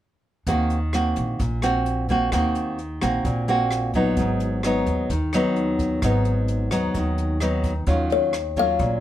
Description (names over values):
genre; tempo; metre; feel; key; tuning
bossa nova; 130 BPM; 4/4; straight; unclear; A4 = 441 Hz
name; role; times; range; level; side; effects
nylon-string guitar; accompaniment; 0.5-9.0 s; Ab2 to Gb4; -22 LUFS; equal; none
upright bass; bass; 0.5-9.0 s; Ab1 to Eb2; -26 LUFS; right 1 dB; none
jazz brush drum kit; drums; 0.5-8.9 s; hi-hat, kick drum, rim click; -31 LUFS; equal; none
kalimba; melody; 8.1-9.0 s; Db5 to F5; -22 LUFS; left 9 dB; none
room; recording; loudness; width
light reverb; none; -20 LUFS; side -12 dB against mid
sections
0.5-7.9 A section; 7.9-9.0 B section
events
none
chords
0.5 Ebm6; 4.2 Abm7; 7.9 Ebm9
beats
| 0.47 0.93 1.40 1.86 | 2.32 2.78 3.25 3.71 | 4.17 4.63 5.10 5.56 | 6.02 6.49 6.95 7.41 | 7.87 8.34 8.80